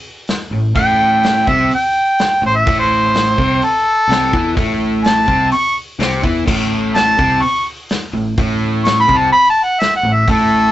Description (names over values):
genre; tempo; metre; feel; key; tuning
blues rock power trio and southern rock; 126 BPM; 4/4; straight; unclear; A4 = 438 Hz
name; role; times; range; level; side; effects
vintage drum kit; drums; 0.3-10.4 s; crash cymbal, hi-hat, kick drum, snare drum; -21 LUFS; equal; none
overdriven semi-hollow guitar; riff; 0.5-10.7 s; A2 to E4; -18 LUFS; equal; none
picked electric bass; bass; 0.5-10.7 s; A1 to E2; -21 LUFS; equal; none
mellow harmonica; melody; 0.8-10.7 s; A4 to C#6; -12 LUFS; equal; overdrive
room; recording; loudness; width
light reverb; rough rehearsal-room recording, nothing above 8.0 kHz; -12 LUFS; side -14 dB against mid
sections
0.0-10.7 A section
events
harmonica solo 0.0-10.7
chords
0.0 A5